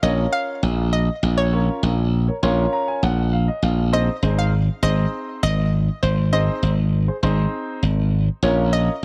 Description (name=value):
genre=dance-pop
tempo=100 BPM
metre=4/4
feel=straight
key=Bb minor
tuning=A4 = 440 Hz
part: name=hollow square pluck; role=melody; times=0.0-9.0 s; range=C5 to F5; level=-28 LUFS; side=equal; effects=chorus, tape echo
part: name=dark grand piano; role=accompaniment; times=0.0-8.9 s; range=C4 to C6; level=-28 LUFS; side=equal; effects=none
part: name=glassy slap bass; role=bass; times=0.0-8.9 s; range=Ab1 to Bb1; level=-21 LUFS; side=equal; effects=none
room=small room ambience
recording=dry, gritty hardware recording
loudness=-20 LUFS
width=mono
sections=0.0-9.0 A section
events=grand piano fill 2.1-3.9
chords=0.0 Bbm; 3.9 Ab; 8.4 Bbm